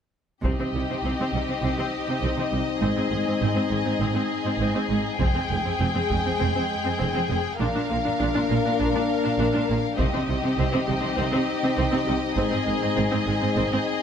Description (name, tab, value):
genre	cinematic, epic orchestral film score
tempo	100 BPM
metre	4/4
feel	straight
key	C minor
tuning	A4 = 439 Hz
part	rich symphonic viola section	accompaniment	0.4-13.8 s	G3 to D4	-30 LUFS	equal	none
part	warm French horn section	sustained chords	0.4-14.0 s	Ab3 to Ab4	-28 LUFS	left 4 dB	none
part	rich symphonic cello section	bass	0.4-13.8 s	F2 to C3	-29 LUFS	right 3 dB	none
part	rich symphonic double bass section	bass	0.4-13.6 s	F1 to C2	-29 LUFS	right 3 dB	none
part	taiko ensemble	drums	0.4-1.6, 5.2-6.4, 10.0-11.2 s	none	-29 LUFS	equal	none
part	warm symphonic violin section	melody	0.5-14.0 s	Eb5 to G5	-31 LUFS	left 4 dB	none
part	warm symphonic violin section	second line	0.5-14.0 s	G4 to Bb4	-30 LUFS	left 4 dB	none
room	moderate scoring stage reverb, RT60 1.7 s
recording	none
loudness	-22 LUFS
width	side -8 dB against mid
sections	0.4-14.0 A section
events	build-up 0.4-14.0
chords	0.4 Cm; 2.8 Ab; 5.2 Fmadd9; 7.6 Bb; 10.0 Cm; 12.4 Ab